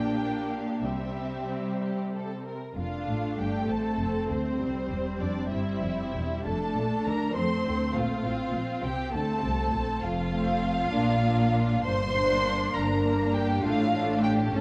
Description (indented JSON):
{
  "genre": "quick classical-period movement for string orchestra",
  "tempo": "61-68 BPM (dotted quarters)",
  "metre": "6/8",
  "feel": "rubato",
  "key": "F major, D minor from 10.0 s",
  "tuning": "A4 = 440 Hz",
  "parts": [
    { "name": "warm studio violin section", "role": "melody", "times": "0.0-14.6 s", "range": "C5 to C6", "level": "-35 LUFS", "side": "equal", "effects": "none" },
    { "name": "warm symphonic violin section", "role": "second line", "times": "0.0-14.6 s", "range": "C4 to C5", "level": "-36 LUFS", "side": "equal", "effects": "none" },
    { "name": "warm studio viola section", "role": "accompaniment", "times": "0.0-14.6 s", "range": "G3 to D4", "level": "-32 LUFS", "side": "equal", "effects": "none" },
    { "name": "rich studio cello section", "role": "bass", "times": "0.0-14.6 s", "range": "C2 to F3", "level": "-36 LUFS", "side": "equal", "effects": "none" },
    { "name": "warm studio double bass section", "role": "bass", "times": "0.0-14.6 s", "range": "E1 to F2", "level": "-36 LUFS", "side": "equal", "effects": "none" }
  ],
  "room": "wet concert hall reverb, RT60 2.0 s",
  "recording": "dark, warm production",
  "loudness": "-28 LUFS",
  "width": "mono",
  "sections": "0.0-2.8 A section; 2.8-14.6 B section",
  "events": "none",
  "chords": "0.0 Gm/Bb; 0.8 C; 2.8 F; 4.6 C; 6.5 F; 8.2 F/A; 10.0 F; 10.9 Bb; 11.8 Gm; 13.6 Dm/A",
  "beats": "| 0.84 1.81 | 2.78 3.69 | 4.60 5.50 | 6.46 7.36 | 8.24 9.13 | 10.01 10.91 | 11.84 12.74 | 13.63 14.53"
}